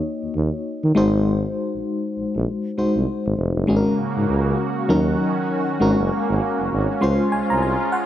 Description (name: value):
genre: R&B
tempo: 99 BPM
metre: 4/4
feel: swing 60% on 16ths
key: unclear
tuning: A4 = 440 Hz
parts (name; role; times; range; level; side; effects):
- FM electric piano with tremolo; accompaniment; 0.0-8.1 s; Gb3 to C6; -21 LUFS; left 2 dB; none
- mellow tuba; bass; 0.2-7.8 s; F1 to Eb3; -22 LUFS; right 1 dB; none
- lush unison pad; sustained chords; 3.7-8.1 s; Db3 to Gb4; -24 LUFS; right 4 dB; chorus, phaser
room: light reverb, studio reverb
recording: dark, warm production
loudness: -18 LUFS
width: side -12 dB against mid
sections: 0.0-3.7 A section; 3.7-8.1 B section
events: FM electric piano fill 6.7-8.1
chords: 0.0 Ebm7; 1.0 Ab7; 3.7 Ab9sus4; 4.9 Ebm7; 5.8 Ab9sus4; 7.0 Dbmaj7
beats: 0.04 0.65 | 1.26 1.86 2.47 3.08 | 3.68 4.29 4.89 5.50 | 6.11 6.71 7.32 7.92